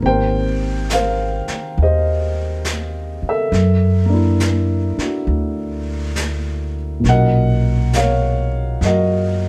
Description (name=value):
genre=jazz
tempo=68 BPM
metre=4/4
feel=swing 67% on 8ths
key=unclear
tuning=A4 = 441 Hz
part: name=dark upright piano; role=accompaniment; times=0.0-9.5 s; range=A#2 to G5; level=-22 LUFS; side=equal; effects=none
part: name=upright bass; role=bass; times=0.0-9.5 s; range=Ab1 to Db3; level=-20 LUFS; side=equal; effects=none
part: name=vintage brush drum kit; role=drums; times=0.0-9.5 s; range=brushed snare drum, hi-hat, snare drum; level=-30 LUFS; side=equal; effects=none
room=light reverb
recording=none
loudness=-18 LUFS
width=mono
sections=0.0-9.5 A section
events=none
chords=0.0 Abmaj9; 3.5 Gb7alt; 7.0 Bmaj9